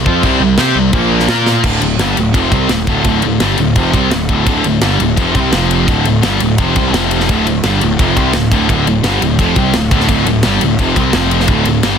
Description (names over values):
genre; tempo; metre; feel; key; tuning
heavy metal; 171 BPM; 4/4; straight; D minor; A4 = 437 Hz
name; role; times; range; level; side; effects
heavy high-gain guitar; riff; 0.0-12.0 s; D2 to C5; -15 LUFS; left 12 dB; distortion
overdriven electric guitar; riff; 0.0-1.6 s; Bb2 to C5; -17 LUFS; equal; none
sludgy distorted guitar; riff; 0.0-12.0 s; D2 to C5; -16 LUFS; right 11 dB; overdrive
fuzz picked electric bass; bass; 0.0-12.0 s; D1 to C3; -17 LUFS; equal; overdrive
tight metal drum kit; drums; 0.1-11.9 s; crash cymbal, kick drum, ride cymbal, snare drum; -16 LUFS; equal; soft clipping on kick
room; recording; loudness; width
light reverb; dense, heavily limited modern master; -10 LUFS; side -7 dB against mid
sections
0.0-1.6 A section; 1.6-12.0 B section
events
drum fill 1.5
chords
0.0 C5; 0.9 Bb5; 1.6 Dm; 5.5 F5; 5.9 Dm; 6.9 F5; 7.3 Dm; 11.1 F5